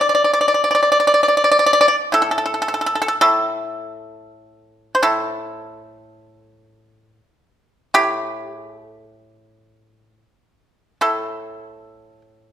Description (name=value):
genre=chinese traditional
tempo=82 BPM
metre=4/4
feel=uneven beats, rubato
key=unclear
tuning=A4 = 440 Hz
part: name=pipa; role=solo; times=0.0-12.5 s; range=A2 to D5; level=-15 LUFS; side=equal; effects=none
room=moderate recital hall reverb, RT60 1.5 s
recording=minimal, uncompressed stereo recording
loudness=-15 LUFS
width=side -10 dB against mid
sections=0.0-12.5 A section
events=none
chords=none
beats=| 0.65 1.41 2.15 2.88 | 3.60 4.32 5.04 5.76 | 6.48 7.21 7.95 8.70 | 9.47 10.23 11.01 11.82